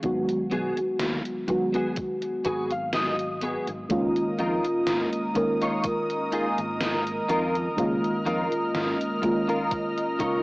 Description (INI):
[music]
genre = vaporwave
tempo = 62 BPM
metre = 4/4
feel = swing 53% on 16ths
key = Db mixolydian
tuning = A4 = 439 Hz
[part]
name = mellow FM electric piano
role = accompaniment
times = 0.0-10.4 s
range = Eb3 to Bb4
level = -26 LUFS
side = equal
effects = analog chorus, analog delay
[part]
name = fretless electric bass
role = bass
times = 0.0-10.4 s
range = Ab1 to F2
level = -35 LUFS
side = equal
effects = analog chorus
[part]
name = electronic kick drum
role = drums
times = 0.0-10.4 s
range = none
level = -37 LUFS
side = equal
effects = none
[part]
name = gated 80s digital drum machine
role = drums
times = 0.0-10.4 s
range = hi-hat, snare drum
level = -32 LUFS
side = equal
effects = gated reverb, gated reverb snare
[part]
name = clean electric guitar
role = riff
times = 0.5-10.4 s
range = Cb4 to Ab5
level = -30 LUFS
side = left 1 dB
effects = ensemble chorus, vintage 12-bit sampler grit, low-pass filter, analog delay
[part]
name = lush unison pad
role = sustained chords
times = 3.9-10.4 s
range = Bb4 to F6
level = -30 LUFS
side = equal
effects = chorus
[sound]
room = light reverb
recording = worn, warbling old tape, cassette tape, warbly pitch drift, small speaker sound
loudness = -24 LUFS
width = side -23 dB against mid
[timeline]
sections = 0.0-10.4 A section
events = clean electric guitar fill 2.0-3.9, 9.7-10.4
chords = 0.0 Abm7; 3.9 Db69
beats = | 0.03 1.00 1.97 2.94 | 3.90 4.87 5.84 6.81 | 7.78 8.74 9.71